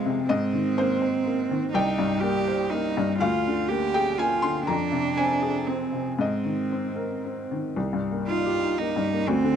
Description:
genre	neoclassical piano and strings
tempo	121 BPM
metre	3/4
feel	rubato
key	C minor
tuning	A4 = 440 Hz
part	warm cello	second line	0.0-9.6 s	Ab3 to G4	-27 LUFS	right 7 dB	none
part	felt-muted upright piano	accompaniment	0.0-9.6 s	C2 to C6	-25 LUFS	left 3 dB	none
room	small room ambience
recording	dry, close 1970s-style studio recording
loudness	-23 LUFS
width	side -8 dB against mid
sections	0.0-7.8 A section; 7.8-9.6 B section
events	none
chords	0.3 Abadd9; 1.7 Cm7; 3.2 Bb7/D; 4.7 Fm; 6.2 Abadd9; 7.8 Cm7

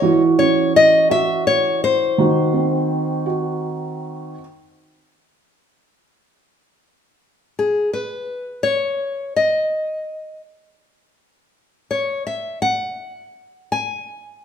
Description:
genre	folk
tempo	84 BPM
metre	3/4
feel	straight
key	unclear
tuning	A4 = 440 Hz
part	nylon-string guitar	melody	0.0-3.9, 7.6-14.4 s	G#4 to G#5	-18 LUFS	left 2 dB	none
part	felt-muted upright piano	arpeggios	0.0-4.4 s	D#3 to F#4	-18 LUFS	right 3 dB	none
room	wet large studio reverb, RT60 1.3 s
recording	minimal, uncompressed stereo recording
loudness	-17 LUFS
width	side -8 dB against mid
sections	0.0-4.3 A section; 4.3-6.5 B section; 6.5-14.4 C section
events	none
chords	0.0 F#5; 2.2 D#m6; 4.3 N.C.

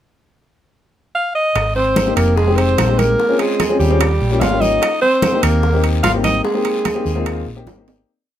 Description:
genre	Afro-Cuban jazz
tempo	147 BPM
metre	4/4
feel	straight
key	Ab major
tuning	A4 = 440 Hz
part	clear alto saxophone	melody	1.1-7.6 s	G4 to F5	-18 LUFS	right 1 dB	none
part	hollow-body short-scale fingered electric bass	bass	1.6-8.0 s	F1 to Eb2	-18 LUFS	equal	none
part	bongos	percussion	1.6-8.1 s	none	-28 LUFS	left 6 dB	none
part	claves	percussion	1.6-7.5 s	none	-32 LUFS	left 3 dB	none
part	congas	percussion	1.6-7.9 s	none	-23 LUFS	left 1 dB	none
part	guiro	percussion	1.6-8.1 s	none	-33 LUFS	left 4 dB	none
part	timbales	percussion	1.6-8.0 s	none	-24 LUFS	right 9 dB	none
part	growling tenor saxophone	second line	1.8-7.6 s	G3 to F4	-22 LUFS	right 4 dB	none
part	warm baby grand piano	accompaniment	2.1-8.1 s	Ab3 to Ab4	-21 LUFS	left 5 dB	none
room	moderate studio reverb, RT60 0.6 s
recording	none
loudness	-14 LUFS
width	side -11 dB against mid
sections	0.0-1.6 pickup bar; 1.6-8.1 A section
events	fade-out 6.4-8.1; drum fill 7.7-8.1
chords	0.0 N.C.; 1.6 Fm7; 3.2 Bbm13; 4.0 Eb7; 4.8 Abmaj9

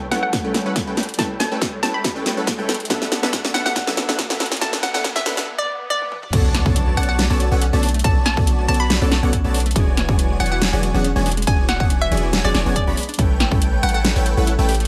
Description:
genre	future bass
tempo	140 BPM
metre	4/4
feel	swing 53% on 16ths, half-time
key	B minor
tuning	A4 = 440 Hz
part	supersaw stab	riff	0.0-14.7 s	E3 to B5	-28 LUFS	equal	sidechain pumping
part	riser, swell and impact	sound effects	0.3-8.0 s	none	-34 LUFS	equal	none
part	hollow square pluck	melody	0.1-14.1 s	D5 to B5	-27 LUFS	equal	chorus, sidechain pumping, tape echo
part	glassy digital keys	accompaniment	0.1-14.7 s	D3 to A4	-30 LUFS	equal	chorus, sidechain pumping, tape echo
part	dubstep drum kit	drums	0.1-14.9 s	crash cymbal, hi-hat, snare drum, toms	-24 LUFS	equal	none
part	electronic kick drum	drums	0.3-13.6 s	none	-23 LUFS	equal	none
part	airy dreamy lead	arpeggios	6.3-14.7 s	F#5 to B5	-35 LUFS	equal	none
part	unison pluck	arpeggios	6.3-14.9 s	G#3 to C#5	-34 LUFS	equal	none
part	warm 808-style bass	bass	6.3-14.9 s	E1 to B1	-23 LUFS	equal	sidechain pumping
room	light reverb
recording	high-pass filter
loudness	-19 LUFS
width	mono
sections	0.0-6.3 A section; 6.3-14.9 B section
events	build-up 0.0-6.3; drum fill 0.0-5.5, 5.9-6.3; filter sweep on supersaw synth 0.0-6.3; filter sweep 0.0-6.3; break 5.5-6.3; swell 5.5-6.3; drop 6.3-14.9; impact 6.3-8.0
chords	0.0 A7; 2.9 D6; 6.3 Bm9; 9.8 E13; 13.2 A7

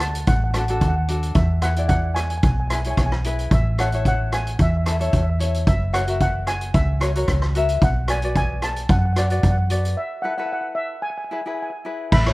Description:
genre	calypso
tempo	112 BPM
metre	4/4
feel	straight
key	unclear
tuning	A4 = 440 Hz
part	steel pan	melody	0.0-12.3 s	E5 to B5	-27 LUFS	right 1 dB	tape echo
part	tenor ukulele	accompaniment	0.0-12.3 s	D4 to E5	-27 LUFS	left 2 dB	none
part	hollow-body short-scale fingered electric bass	bass	0.0-12.3 s	F#1 to F#2	-21 LUFS	equal	none
part	street-band drum kit	drums	0.0-12.3 s	crash cymbal, hi-hat, kick drum, rim click	-22 LUFS	equal	none
room	little or no reverb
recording	rough home demo mix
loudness	-18 LUFS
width	side -20 dB against mid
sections	0.0-12.1 A section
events	break 10.0-12.1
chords	0.0 D; 1.4 E7; 3.5 A; 5.7 F#7; 7.8 Bm; 10.0 Esus4; 11.0 E

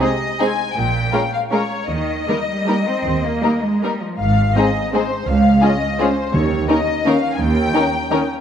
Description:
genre	classical, orchestral ballroom waltz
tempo	148-183 BPM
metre	3/4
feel	rubato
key	Ab major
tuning	A4 = 441 Hz
part	warm symphonic violin section	melody	0.0-8.3 s	C5 to Ab5	-22 LUFS	left 5 dB	none
part	warm symphonic violin section	second line	0.0-8.2 s	Eb4 to Bb4	-23 LUFS	left 3 dB	none
part	warm symphonic viola section	accompaniment	0.0-8.2 s	Eb3 to Db4	-24 LUFS	right 1 dB	none
part	rich studio double bass section	bass	0.8-7.7 s	Ab1 to Eb2	-22 LUFS	right 3 dB	none
part	rich symphonic cello section	bass	0.8-7.7 s	Db2 to C4	-21 LUFS	right 2 dB	none
part	mellow French horn section	sustained chords	4.6-8.2 s	Ab3 to Db4	-23 LUFS	left 2 dB	none
part	timpani	percussion	6.3-6.8 s	Eb3	-24 LUFS	left 1 dB	none
room	moderate scoring stage reverb, RT60 1.6 s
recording	none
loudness	-16 LUFS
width	side -8 dB against mid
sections	0.0-4.2 A section; 4.2-8.4 B section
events	none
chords	0.0 Ab; 0.8 Bbm7; 1.9 Eb; 4.2 Ab; 5.3 Db; 6.3 Eb7

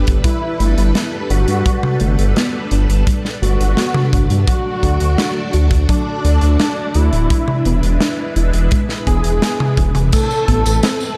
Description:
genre	synthwave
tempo	85 BPM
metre	4/4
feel	straight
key	unclear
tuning	A4 = 440 Hz
part	unison lead	melody	0.0-11.2 s	D4 to A4	-24 LUFS	equal	cassette tape, digital delay
part	string machine, full ensemble	sustained chords	0.0-11.2 s	G3 to D5	-27 LUFS	equal	phaser, ensemble chorus, sidechain pumping
part	soft round pluck	arpeggios	0.0-11.0 s	F#3 to F#4	-28 LUFS	equal	chorus, digital delay
part	detuned saw bass	bass	0.0-10.8 s	D1 to G2	-17 LUFS	equal	chorus, tube saturation, sidechain pumping
part	kick drum	drums	0.1-10.6 s	none	-20 LUFS	equal	none
part	modern studio drum kit	drums	0.1-11.1 s	crash cymbal, hi-hat, snare drum, tambourine, toms	-23 LUFS	equal	none
room	light reverb, studio reverb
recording	dark, warm production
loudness	-16 LUFS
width	mono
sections	0.0-10.1 A section; 10.1-11.2 B section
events	drum fill 9.8-10.1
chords	0.0 Gadd9; 4.5 D; 7.3 E7; 10.1 Amadd9

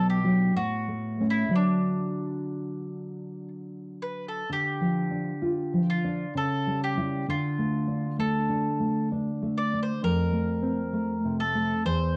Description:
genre	romantic duo for mandolin and classical guitar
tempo	60-67 BPM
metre	3/4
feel	rubato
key	D major, D minor from 4.5 s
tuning	A4 = 438 Hz
part	bowl-back mandolin	melody	0.0-12.2 s	D4 to D5	-34 LUFS	equal	cassette tape
part	nylon-string guitar	accompaniment	0.0-12.2 s	E2 to F4	-29 LUFS	equal	cassette tape
room	light reverb, small room ambience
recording	home recording on cassette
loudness	-27 LUFS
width	mono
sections	0.0-4.5 A section; 4.5-12.2 B section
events	none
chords	0.0 Bm; 0.6 A; 1.5 D; 4.5 Dm; 6.4 A7/C#; 7.3 Dm; 10.0 F

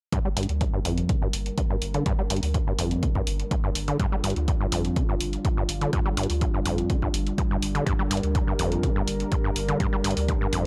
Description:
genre	acid house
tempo	124 BPM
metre	4/4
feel	straight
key	G minor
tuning	A4 = 441 Hz
part	dark analog pad	sustained chords	0.1-10.7 s	G3 to Bb4	-35 LUFS	equal	chorus, sidechain pumping
part	overdriven acid bass	riff	0.1-10.7 s	F2 to G3	-31 LUFS	equal	analog delay
part	electronic hi-hat	drums	0.1-10.6 s	none	-35 LUFS	equal	none
part	electronic kick drum	drums	0.1-10.4 s	none	-29 LUFS	equal	none
part	saturated sub bass	bass	0.4-10.7 s	G1 to D2	-32 LUFS	equal	sidechain pumping
room	digital ambience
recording	dry, gritty hardware recording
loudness	-25 LUFS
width	mono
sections	0.1-10.7 A section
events	filter sweep on acid bass 0.1-10.7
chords	0.1 Gm

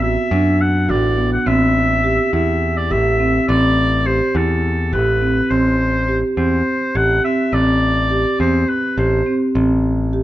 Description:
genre	contemporary instrumental, chamber music in an uneven meter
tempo	208 BPM (eighths)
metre	7/8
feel	straight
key	A dorian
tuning	A4 = 441 Hz
part	clear oboe	melody	0.0-9.4 s	A4 to F#5	-20 LUFS	left 1 dB	none
part	marimba with medium mallets	arpeggios	0.0-10.2 s	B3 to G4	-18 LUFS	right 2 dB	none
part	modern bright picked electric bass	bass	0.0-10.2 s	A1 to F#2	-20 LUFS	left 1 dB	none
room	little or no reverb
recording	close, detailed microphones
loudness	-14 LUFS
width	side -14 dB against mid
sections	0.0-5.5 A section; 5.5-10.2 B section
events	none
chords	0.0 Bm7/A; 1.5 Am7

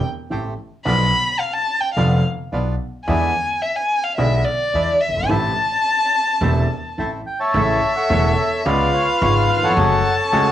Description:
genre	tango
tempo	108 BPM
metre	4/4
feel	rubato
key	A minor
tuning	A4 = 440 Hz
part	warm violin	second line	0.0-10.5 s	D5 to B5	-20 LUFS	left 2 dB	none
part	warm baby grand piano	accompaniment	0.3-10.5 s	E1 to F#4	-23 LUFS	equal	none
part	bandoneon	stabs	0.3-10.5 s	G#3 to G#4	-26 LUFS	right 4 dB	none
part	upright bass	bass	0.3-10.5 s	E1 to E2	-22 LUFS	equal	transformer saturation
part	bandoneon	melody	7.0-10.5 s	E#4 to A5	-18 LUFS	equal	cassette tape
room	light reverb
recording	home recording on cassette, small room reverb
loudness	-16 LUFS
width	side -11 dB against mid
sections	0.0-7.5 A section; 7.5-10.5 B section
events	violin solo 0.0-7.5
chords	0.0 Am7; 0.9 Bdim; 3.1 E7; 5.3 Am; 7.5 A; 8.7 C#7; 9.8 F#madd9

